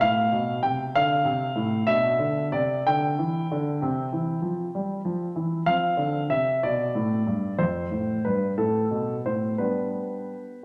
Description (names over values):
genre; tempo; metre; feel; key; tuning
classical, baroque-style suite movement for grand piano; 57-66 BPM (dotted quarters); 12/8; rubato; unclear; A4 = 439 Hz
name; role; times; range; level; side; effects
warm concert grand piano; solo; 0.0-10.6 s; F2 to G5; -25 LUFS; equal; none
room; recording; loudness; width
wet recital hall reverb, RT60 1.8 s; none; -25 LUFS; mono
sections
0.0-10.6 A section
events
none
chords
0.0 Dm7; 1.9 G/B; 3.8 C; 5.7 F; 9.6 G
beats
0.01 0.94 | 1.88 2.88 3.83 4.75 | 5.69 6.63 7.58 8.56 | 9.58 10.63